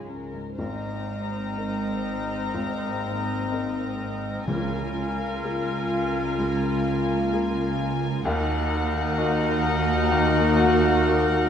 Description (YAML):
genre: cinematic, emotional film score for orchestra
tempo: 63 BPM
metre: 4/4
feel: rubato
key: unclear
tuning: A4 = 435 Hz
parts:
  - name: warm studio violin section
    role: melody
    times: 0.0-11.5 s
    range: Ab3 to Bb5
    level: -34 LUFS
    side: left 7 dB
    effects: none
  - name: dark studio violin section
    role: second line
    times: 0.0-11.5 s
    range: Bb4 to C5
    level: -33 LUFS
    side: left 5 dB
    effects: none
  - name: warm grand piano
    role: accompaniment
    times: 0.0-11.5 s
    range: Ab1 to Db5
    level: -31 LUFS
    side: left 1 dB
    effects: none
  - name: warm studio viola section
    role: accompaniment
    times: 0.0-11.5 s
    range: Eb4 to F4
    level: -33 LUFS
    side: equal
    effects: none
  - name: dark studio cello section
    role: bass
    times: 0.0-11.5 s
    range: Db2 to Ab2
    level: -30 LUFS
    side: right 2 dB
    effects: none
  - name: dark studio double bass section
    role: bass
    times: 0.0-11.5 s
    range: Ab1 to Eb2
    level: -32 LUFS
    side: right 3 dB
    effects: none
  - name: clear clarinet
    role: second line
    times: 0.6-11.5 s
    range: C4 to Eb4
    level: -33 LUFS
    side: left 1 dB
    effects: none
  - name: clear oboe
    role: second line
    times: 0.6-11.5 s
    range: Bb4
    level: -35 LUFS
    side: equal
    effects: none
  - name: hollow flute section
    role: second line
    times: 0.6-11.5 s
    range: Eb5 to Gb5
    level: -35 LUFS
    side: equal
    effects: none
  - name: warm French horn section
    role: sustained chords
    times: 0.6-11.5 s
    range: Bb3 to Gb4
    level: -29 LUFS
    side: left 2 dB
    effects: none
  - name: timpani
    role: percussion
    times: 4.5-5.9 s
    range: Db3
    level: -33 LUFS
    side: equal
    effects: none
room: wet concert hall reverb, RT60 1.9 s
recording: none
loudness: -22 LUFS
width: side -8 dB against mid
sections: 0.6-11.5 A section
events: none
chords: 0.0 Db; 0.6 Abadd9; 4.5 Db6; 8.3 Ebm